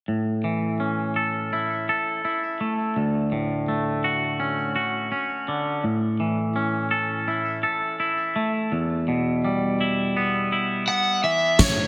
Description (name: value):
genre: post-rock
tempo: 83 BPM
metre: 4/4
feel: straight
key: unclear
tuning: A4 = 440 Hz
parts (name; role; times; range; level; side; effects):
- twangy electric guitar; arpeggios; 0.1-11.9 s; D2 to A4; -25 LUFS; equal; spring reverb, analog delay
- lead guitar through a small cranked amp; melody; 10.9-11.9 s; C#5 to F#5; -23 LUFS; equal; overdrive
- felt-muted upright piano; arpeggios; 11.6-11.9 s; C#6; -36 LUFS; equal; none
- huge arena drum kit; drums; 11.6-11.8 s; kick drum, snare drum; -20 LUFS; equal; none
room: moderate concert hall reverb, RT60 2.0 s, studio reverb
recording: none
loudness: -24 LUFS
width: mono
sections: 0.1-11.6 A section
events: none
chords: 0.1 A; 3.0 Dmaj7; 5.8 A; 8.7 Em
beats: | 0.08 0.80 1.52 2.24 | 2.96 3.68 4.40 5.12 | 5.84 6.56 7.28 8.00 | 8.71 9.43 10.15 10.87 | 11.59